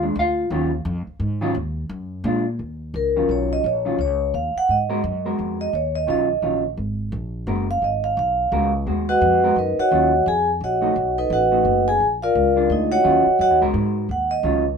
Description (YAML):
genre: jazz, small-group swing and bop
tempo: 172 BPM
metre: 3/4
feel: swing 63% on 8ths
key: Eb minor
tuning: A4 = 441 Hz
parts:
  - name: hollow-body jazz guitar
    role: accompaniment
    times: 0.0-14.6 s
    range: Eb3 to F5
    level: -23 LUFS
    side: equal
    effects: none
  - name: upright bass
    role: bass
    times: 0.0-14.8 s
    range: Gb1 to Bb2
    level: -26 LUFS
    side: equal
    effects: none
  - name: vibraphone with medium mallets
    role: melody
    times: 3.0-14.6 s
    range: Eb4 to Ab5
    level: -18 LUFS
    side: right 1 dB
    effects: none
room: light reverb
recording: minimal, uncompressed stereo recording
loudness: -18 LUFS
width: side -6 dB against mid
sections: 0.0-2.6 A section; 2.6-14.8 B section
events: none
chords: 0.0 Bb7 (rootless); 0.5 Ebm9; 1.2 Ab5; 1.5 Ebm; 2.2 Bb7; 2.6 Ebm9; 4.7 Abm9; 5.7 Ebm9; 6.8 Abm9; 9.9 Ebm9; 11.0 B7; 12.0 Bb7; 13.0 Ebm9; 13.7 Abm9; 14.1 Ebm9